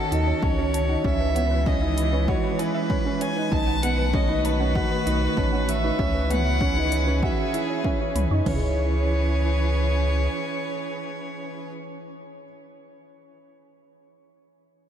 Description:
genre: piano and strings electronica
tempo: 97 BPM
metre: 4/4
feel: straight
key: C# minor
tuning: A4 = 443 Hz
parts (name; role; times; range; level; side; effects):
- rich violin; melody; 0.0-11.7 s; A4 to A5; -30 LUFS; left 1 dB; ping-pong delay
- warm string quartet; sustained chords; 0.0-11.7 s; D#3 to B4; -29 LUFS; right 1 dB; sidechain pumping
- warbly dusty pluck; arpeggios; 0.0-8.8 s; B4 to C#6; -36 LUFS; right 1 dB; chorus, sidechain pumping, ping-pong delay
- dark upright piano; riff; 0.1-12.5 s; B3 to C#5; -29 LUFS; right 2 dB; ping-pong delay
- round analog bass; bass; 0.1-10.3 s; A1 to F#2; -24 LUFS; equal; sidechain pumping
- deep house drum kit; drums; 0.1-8.3 s; hi-hat, toms; -36 LUFS; right 1 dB; overdrive
- deep house drum kit; drums; 0.4-8.6 s; crash cymbal, kick drum, toms; -26 LUFS; equal; overdrive
room: moderate cathedral reverb, RT60 5.3 s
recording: dreamy mix soaked in reverb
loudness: -21 LUFS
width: side -9 dB against mid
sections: 0.0-8.5 A section; 8.5-10.9 B section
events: drop 0.0-8.5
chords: 0.0 D#m7b5; 1.0 C#m7; 3.5 B7; 6.0 C#m7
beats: 0.43 | 1.04 1.66 2.28 2.90 | 3.52 4.14 4.76 5.38 | 5.99 6.61 7.23 7.85 | 8.47 9.09 9.71 10.32

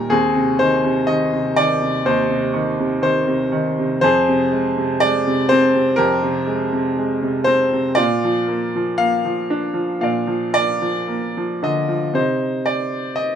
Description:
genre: classical, lyrical solo piano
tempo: 60 BPM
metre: 4/4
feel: rubato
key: unclear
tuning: A4 = 442 Hz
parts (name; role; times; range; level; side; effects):
- bright baby grand piano; solo; 0.0-13.4 s; Eb2 to F5; -16 LUFS; equal; none
room: light reverb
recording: none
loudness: -16 LUFS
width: side -8 dB against mid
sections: 0.0-12.2 A section; 12.2-13.4 B section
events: none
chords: 0.1 Ab/Eb; 4.0 Fmadd9; 8.0 Bb; 12.2 Cmadd9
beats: | 0.10 1.09 2.07 3.05 | 4.03 5.01 5.99 6.98 | 7.99 9.01 10.03 11.10 | 12.17 13.18

